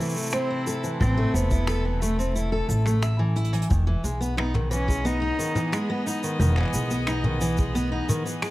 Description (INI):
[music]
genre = folktronica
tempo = 89 BPM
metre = 4/4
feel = straight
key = E major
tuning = A4 = 440 Hz
[part]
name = rich cello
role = melody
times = 0.0-6.2 s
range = G#3 to D#4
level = -30 LUFS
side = equal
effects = digital delay
[part]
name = rich string quartet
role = sustained chords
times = 0.0-8.5 s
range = C3 to D#5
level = -33 LUFS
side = equal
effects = none
[part]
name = picked steel-string acoustic guitar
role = arpeggios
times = 0.0-8.5 s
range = D#3 to E5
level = -28 LUFS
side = equal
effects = digital delay
[part]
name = soft brush drum kit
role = drums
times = 0.0-8.5 s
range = finger snaps, hi-hat, shaker, toms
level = -31 LUFS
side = equal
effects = none
[part]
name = upright bass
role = bass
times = 1.0-8.0 s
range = E1 to B1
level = -25 LUFS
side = equal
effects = none
[part]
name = kick drum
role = drums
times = 1.0-7.7 s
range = none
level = -25 LUFS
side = equal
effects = none
[sound]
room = light reverb, small room ambience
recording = vinyl crackle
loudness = -22 LUFS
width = side -17 dB against mid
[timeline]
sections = 0.0-3.7 A section; 3.7-8.5 B section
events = kick drops out 2.4-3.7; drum fill 3.4-3.7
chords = 0.0 Am; 3.7 Emaj7